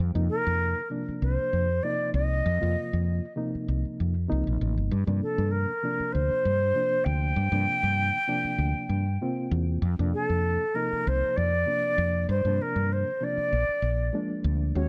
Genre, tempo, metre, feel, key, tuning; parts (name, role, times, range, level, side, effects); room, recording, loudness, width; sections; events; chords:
electric jazz fusion; 98 BPM; 4/4; straight; A4 = 439 Hz
woody fretless electric bass; bass; 0.0-14.9 s; G1 to G2; -28 LUFS; equal
reed electric piano; accompaniment; 0.1-14.9 s; C3 to Gb4; -35 LUFS; equal; fast tremolo
silver concert flute; melody; 0.3-14.9 s; A4 to G5; -30 LUFS; equal
light reverb, small room ambience; -27 LUFS; mono
0.0-14.8 A section
0.0 F7sus4; 4.9 Gm7; 9.8 F7sus4; 12.3 Gm7; 13.5 Bb7